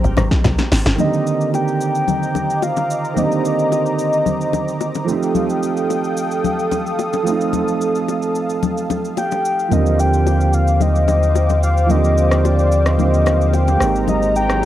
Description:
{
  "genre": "amapiano",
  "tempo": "110 BPM",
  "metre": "4/4",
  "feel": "straight",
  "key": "C minor",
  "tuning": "A4 = 438 Hz",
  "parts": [
    { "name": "soft octave-layered synth lead", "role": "melody", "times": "0.0-5.0, 9.2-14.7 s", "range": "C5 to G5", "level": "-20 LUFS", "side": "left 2 dB", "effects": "chorus, tape echo" },
    { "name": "dark concert grand piano", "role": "accompaniment", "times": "0.0-14.7 s", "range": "D3 to G4", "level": "-20 LUFS", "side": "right 5 dB", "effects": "none" },
    { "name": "warm analog pad", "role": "sustained chords", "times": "0.0-14.7 s", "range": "Ab3 to Eb6", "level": "-24 LUFS", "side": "equal", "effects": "chorus, sidechain pumping" },
    { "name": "tight log drum bass", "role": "bass", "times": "0.0-1.0 s", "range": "G1 to C2", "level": "-16 LUFS", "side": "equal", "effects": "none" },
    { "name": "deep house drum kit", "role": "drums", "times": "0.0-14.6 s", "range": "hi-hat, kick drum, rim click, shaker, snare drum", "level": "-23 LUFS", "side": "equal", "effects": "cassette tape" },
    { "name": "bongos and congas", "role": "percussion", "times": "0.0-14.2 s", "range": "none", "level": "-24 LUFS", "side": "left 9 dB", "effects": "none" },
    { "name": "punchy sub bass", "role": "bass", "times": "9.7-14.7 s", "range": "Ab1 to Eb2", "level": "-16 LUFS", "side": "equal", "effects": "none" },
    { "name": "riser", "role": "sound effects", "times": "14.4-14.7 s", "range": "none", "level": "-30 LUFS", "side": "left 3 dB", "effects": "none" }
  ],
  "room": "light reverb, digital ambience",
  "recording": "home recording on cassette",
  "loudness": "-15 LUFS",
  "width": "side -12 dB against mid",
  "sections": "1.0-14.7 A section",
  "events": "drum fill 0.4-1.0",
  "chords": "0.0 Abmaj9; 1.0 Cm9; 5.1 F9; 9.7 Ebmaj13; 13.8 Abmaj9"
}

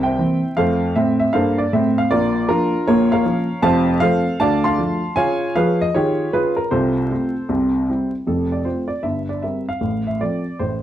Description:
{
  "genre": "jazz, stride piano",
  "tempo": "155 BPM",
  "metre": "4/4",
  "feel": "swing 62% on 8ths",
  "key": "F major",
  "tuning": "A4 = 440 Hz",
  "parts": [
    { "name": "warm upright piano", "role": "solo", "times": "0.0-10.8 s", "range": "F1 to C6", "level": "-16 LUFS", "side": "equal", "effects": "none" }
  ],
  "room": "moderate club reverb, RT60 0.8 s",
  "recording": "dark, warm production, vinyl crackle",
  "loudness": "-16 LUFS",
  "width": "side -11 dB against mid",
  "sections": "0.0-8.3 A section; 8.3-10.8 B section",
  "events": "none",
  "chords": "0.0 C7; 0.5 F; 2.1 Bb; 2.9 Bbm; 3.6 F; 4.4 Dm7; 5.2 Db7; 6.7 F/C; 7.5 C; 8.3 F; 9.0 C5/G; 9.8 F/A"
}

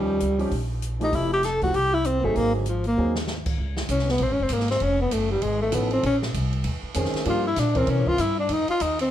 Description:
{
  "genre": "jazz, small-group swing and bop",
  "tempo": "196 BPM",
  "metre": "4/4",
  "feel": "swing 61% on 8ths",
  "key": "unclear",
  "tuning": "A4 = 440 Hz",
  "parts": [
    { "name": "breathy tenor saxophone", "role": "melody", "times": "0.0-9.1 s", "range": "D3 to A4", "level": "-24 LUFS", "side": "left 2 dB", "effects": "none" },
    { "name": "breathy trombone", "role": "second line", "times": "0.0-9.1 s", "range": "D3 to A4", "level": "-30 LUFS", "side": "right 4 dB", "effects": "none" },
    { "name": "warm concert grand piano", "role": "accompaniment", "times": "0.0-3.1, 5.7-8.2 s", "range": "Eb3 to Bb4", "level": "-29 LUFS", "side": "right 1 dB", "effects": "none" },
    { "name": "upright bass", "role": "bass", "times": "0.0-9.1 s", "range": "F1 to C3", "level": "-27 LUFS", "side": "equal", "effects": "none" },
    { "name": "open jazz drum kit", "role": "drums", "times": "0.2-9.0 s", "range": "crash cymbal, hi-hat, kick drum, ride cymbal, snare drum", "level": "-32 LUFS", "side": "right 1 dB", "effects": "none" }
  ],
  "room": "light reverb",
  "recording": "none",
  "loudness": "-21 LUFS",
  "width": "side -11 dB against mid",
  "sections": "0.0-3.6 A section; 3.6-9.1 B section",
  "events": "drum fill 3.0-3.3",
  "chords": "0.0 Eb9; 1.1 Fmaj9; 2.4 Ab7; 3.6 Dbmaj7(no3); 4.8 F7alt; 6.0 Bbm11; 7.3 Gm7; 7.9 C7b9; 8.5 F7(no3)"
}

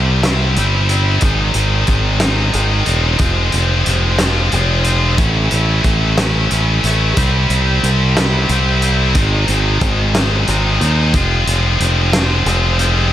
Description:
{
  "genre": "quiet-loud alternative rock",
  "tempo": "61 BPM (dotted quarters)",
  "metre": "6/8",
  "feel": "straight",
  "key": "unclear",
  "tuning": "A4 = 435 Hz",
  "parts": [
    { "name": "heavy high-gain guitar", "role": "riff", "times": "0.0-13.1 s", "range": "Ab2 to F4", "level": "-16 LUFS", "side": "left 1 dB", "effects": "distortion" },
    { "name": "growling fingered electric bass", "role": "bass", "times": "0.0-13.1 s", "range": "E1 to Eb2", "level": "-16 LUFS", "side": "equal", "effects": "overdrive" },
    { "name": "loose indie drum kit", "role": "drums", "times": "0.2-12.9 s", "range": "hi-hat, kick drum, snare drum", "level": "-20 LUFS", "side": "equal", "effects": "none" }
  ],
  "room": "small room ambience",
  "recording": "none",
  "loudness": "-12 LUFS",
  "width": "side -12 dB against mid",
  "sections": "0.0-13.1 A section",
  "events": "none",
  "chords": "0.0 C; 1.2 Ab; 3.2 Fm; 5.2 A; 7.2 C; 9.2 Ab; 11.1 Fm"
}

